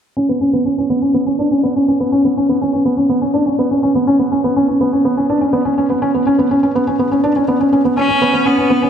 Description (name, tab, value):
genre	electronica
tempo	123 BPM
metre	4/4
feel	straight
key	unclear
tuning	A4 = 440 Hz
part	felt-muted upright piano	riff	0.2-8.9 s	B3 to D4	-13 LUFS	equal	low-pass filter, digital delay
part	bright cello	melody	8.0-8.9 s	B3 to C#4	-14 LUFS	left 1 dB	none
room	wet concert hall reverb, RT60 2.3 s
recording	low-pass filter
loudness	-12 LUFS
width	side -8 dB against mid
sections	0.2-8.0 A section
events	filter sweep on felt piano 0.2-8.0; filter sweep 0.2-8.0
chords	0.2 Bsus2; 8.0 N.C.